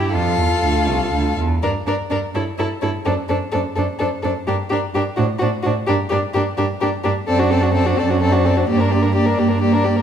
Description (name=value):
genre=quick classical-period movement for string quartet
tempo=85 BPM (dotted quarters)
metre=6/8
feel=straight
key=G minor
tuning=A4 = 440 Hz
part: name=rich violin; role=second line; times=0.0-10.0 s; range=F#4 to Bb4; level=-23 LUFS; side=left 2 dB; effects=none
part: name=rich viola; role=accompaniment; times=0.0-10.0 s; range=Bb3 to F4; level=-22 LUFS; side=right 2 dB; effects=none
part: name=warm cello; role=bass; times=0.0-10.0 s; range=C2 to A2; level=-20 LUFS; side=right 3 dB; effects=none
part: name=warm violin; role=melody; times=0.1-10.0 s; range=Bb4 to F5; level=-25 LUFS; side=left 8 dB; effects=none
room=wet recital hall reverb, RT60 1.6 s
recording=minimal, uncompressed stereo recording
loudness=-16 LUFS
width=side -8 dB against mid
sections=0.0-1.6 A section; 1.6-10.0 B section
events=none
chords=0.1 F; 1.6 Gm; 2.3 A7/G; 3.1 D7/F#; 4.5 Gm; 5.2 D7/A; 5.9 Gm; 7.3 D7/F#; 8.7 Gm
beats=| 0.14 0.89 | 1.62 2.34 | 3.06 3.76 | 4.47 5.17 | 5.87 6.57 | 7.27 7.97 | 8.67 9.38